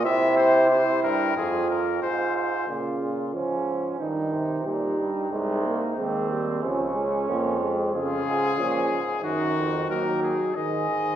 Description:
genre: classical, imitative canzona for brass ensemble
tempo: 91 BPM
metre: 4/4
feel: straight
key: Bb minor, Db major from 7.9 s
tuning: A4 = 440 Hz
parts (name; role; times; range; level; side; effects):
- bright trumpet; melody; 0.0-2.7, 7.9-11.2 s; Gb4 to E5; -28 LUFS; left 6 dB; none
- mellow flugelhorn; second line; 0.0-11.2 s; C4 to Ab4; -29 LUFS; right 3 dB; none
- clear euphonium; bass; 0.0-11.2 s; C2 to C3; -26 LUFS; right 1 dB; none
- mellow trombone; accompaniment; 2.7-11.2 s; Db3 to Bb3; -28 LUFS; right 1 dB; none
room: wet recital hall reverb, RT60 1.4 s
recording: recorded in a church or concert hall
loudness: -22 LUFS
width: side -10 dB against mid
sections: 0.0-2.7 A section; 2.7-11.2 B section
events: none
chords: 0.0 C; 1.4 Fm; 2.7 Bbm; 4.0 Eb/G; 5.3 Ab/C; 6.6 Db; 7.9 Db/F; 9.2 Ebm; 10.5 Ab5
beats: | 0.05 0.71 1.36 2.02 | 2.69 3.34 4.00 4.66 | 5.32 5.97 6.63 7.28 | 7.93 8.58 9.23 9.88 | 10.55

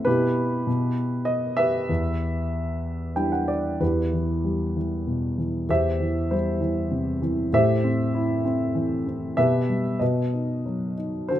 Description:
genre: classical, lyrical solo piano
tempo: 96 BPM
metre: 3/4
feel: uneven beats, rubato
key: E minor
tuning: A4 = 441 Hz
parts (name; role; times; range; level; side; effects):
- dark baby grand piano; solo; 0.0-11.4 s; E2 to G5; -22 LUFS; equal; none
room: light reverb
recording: close, detailed microphones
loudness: -22 LUFS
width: side -12 dB against mid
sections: 0.0-3.8 A section; 3.8-11.4 B section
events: grand piano fill 2.8-3.8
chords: 0.1 Em/B; 1.9 Em7; 3.8 Em; 5.7 C/E; 7.5 Am7; 9.4 Em/B; 10.0 B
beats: | 0.07 0.67 1.28 | 1.89 2.52 3.16 | 3.82 4.46 5.09 | 5.70 6.31 6.92 | 7.53 8.14 8.75 | 9.38 10.01 10.65 | 11.30

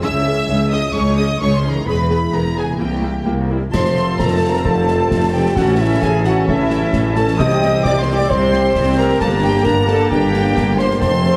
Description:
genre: cinematic, heroic adventure film score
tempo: 132 BPM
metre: 4/4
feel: straight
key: unclear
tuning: A4 = 445 Hz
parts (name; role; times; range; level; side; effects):
- warm symphonic violin section; melody; 0.0-11.4 s; E5 to Fb6; -30 LUFS; equal; none
- rich studio violin section; second line; 0.0-11.4 s; G4 to Eb6; -30 LUFS; equal; none
- rich symphonic viola section; accompaniment; 0.0-11.4 s; Bb3 to A4; -28 LUFS; equal; none
- warm French horn section; sustained chords; 0.0-11.4 s; G3 to Eb5; -23 LUFS; equal; none
- concert harp; arpeggios; 0.0-11.4 s; F2 to A5; -29 LUFS; equal; none
- clear symphonic cello section; bass; 0.0-11.4 s; C2 to C3; -24 LUFS; equal; none
- rich studio double bass section; bass; 0.0-11.4 s; E1 to Db2; -24 LUFS; equal; none
- clear oboe; second line; 3.7-11.4 s; G5 to Bb5; -30 LUFS; equal; none
- hollow concert flute; second line; 3.7-11.4 s; E5 to Eb6; -28 LUFS; equal; none
- mellow clarinet; second line; 3.7-11.4 s; C4 to F4; -28 LUFS; equal; none
- clear trombone section; sustained chords; 3.7-11.4 s; C3 to Bb3; -29 LUFS; equal; none
- warm tuba; bass; 3.7-11.4 s; F1 to C2; -26 LUFS; equal; none
- concert snare drum, clash cymbals and concert bass drum; drums; 3.7-11.3 s; none; -26 LUFS; equal; none
- timpani; percussion; 7.4-8.0 s; C3; -26 LUFS; equal; none
room: wet scoring stage reverb, RT60 1.8 s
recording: heavily compressed radio sound, lossy compression artefacts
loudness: -16 LUFS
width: mono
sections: 0.0-3.7 A section; 3.7-11.4 B section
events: none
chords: 0.0 Dbm; 1.9 E; 2.8 C7; 3.7 F; 5.6 A; 7.4 Cm; 9.2 Gm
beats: | 0.04 0.50 0.95 1.41 | 1.87 2.33 2.80 3.27 | 3.74 4.20 4.65 5.11 | 5.57 6.02 6.48 6.94 | 7.39 7.84 8.30 8.76 | 9.21 9.66 10.11 10.57 | 11.02

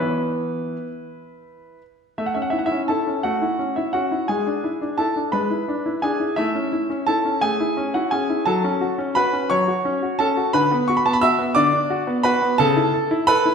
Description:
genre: classical-period piano sonatina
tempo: 58 BPM (dotted quarters)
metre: 6/8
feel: rubato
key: A major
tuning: A4 = 440 Hz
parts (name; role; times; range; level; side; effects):
- clear baby grand piano; solo; 0.0-13.5 s; C#3 to E6; -18 LUFS; equal; none
room: wet recital hall reverb, RT60 1.5 s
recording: none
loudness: -18 LUFS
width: side -6 dB against mid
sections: 0.0-2.2 A section; 2.2-13.5 B section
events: none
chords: 0.0 E5; 2.2 A; 4.3 E7/G#; 6.4 A; 8.5 F#m; 10.5 Bm/D; 12.6 A/C#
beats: 1.09 | 2.18 3.25 | 4.29 5.34 | 6.38 7.43 | 8.47 9.51 | 10.54 11.57 | 12.60

